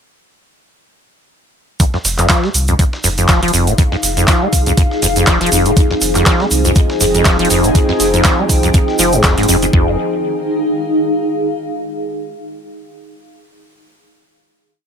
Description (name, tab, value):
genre	acid house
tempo	121 BPM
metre	4/4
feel	swing 56% on 16ths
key	F minor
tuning	A4 = 440 Hz
part	acid bass, saw	riff	1.8-10.0 s	F2 to Ab3	-16 LUFS	equal	tube saturation, wide subtle chorus, ping-pong delay
part	dusty soul sampler-style drum kit	drums	1.8-9.7 s	hi-hat, snare drum	-26 LUFS	left 1 dB	none
part	electro analog drum machine	drums	1.8-9.7 s	handclaps, hi-hat	-18 LUFS	right 1 dB	none
part	electronic kick drum	drums	1.8-9.8 s	none	-13 LUFS	equal	none
part	egg shaker	percussion	1.8-9.7 s	none	-20 LUFS	right 3 dB	none
part	granular cloud pad	texture	3.1-11.7 s	Eb4 to G5	-18 LUFS	equal	built-in reverb, sidechain pumping
part	warm sub bass	bass	2.0-10.0 s	F1 to C2	-20 LUFS	equal	sidechain pumping
part	warm analog pad	sustained chords	5.8-10.0 s	F3 to Ab4	-19 LUFS	equal	chorus, sidechain pumping
room	moderate studio reverb, RT60 0.5 s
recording	none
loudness	-11 LUFS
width	side -7 dB against mid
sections	1.8-9.7 groove; 9.7-11.7 final chord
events	none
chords	1.8 Fm7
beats	| 1.80 2.30 2.79 3.29 | 3.78 4.28 4.78 5.27 | 5.77 6.26 6.76 7.25 | 7.75 8.25 8.74 9.24 | 9.73 10.23 10.73 11.22